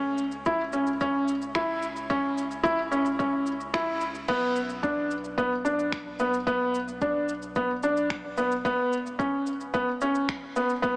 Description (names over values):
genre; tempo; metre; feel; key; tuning
piano and strings electronica; 110 BPM; 4/4; straight; B minor; A4 = 440 Hz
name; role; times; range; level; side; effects
felt-muted upright piano; riff; 0.0-11.0 s; B3 to E4; -25 LUFS; equal; digital delay
warm sub bass; bass; 0.0-11.0 s; E1 to C#2; -48 LUFS; equal; sidechain pumping
deep house drum kit; drums; 0.2-10.9 s; crash cymbal, finger snaps, shaker; -38 LUFS; equal; none
electronic kick drum; drums; 0.5-10.9 s; none; -36 LUFS; equal; none
room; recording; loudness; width
moderate huge ambient reverb, RT60 5.0 s; small speaker sound; -25 LUFS; side -30 dB against mid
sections
0.0-4.3 A section; 4.3-11.0 B section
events
build-up 0.0-4.3; drop 4.3-11.0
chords
0.0 C#m; 4.3 Bm; 8.7 E5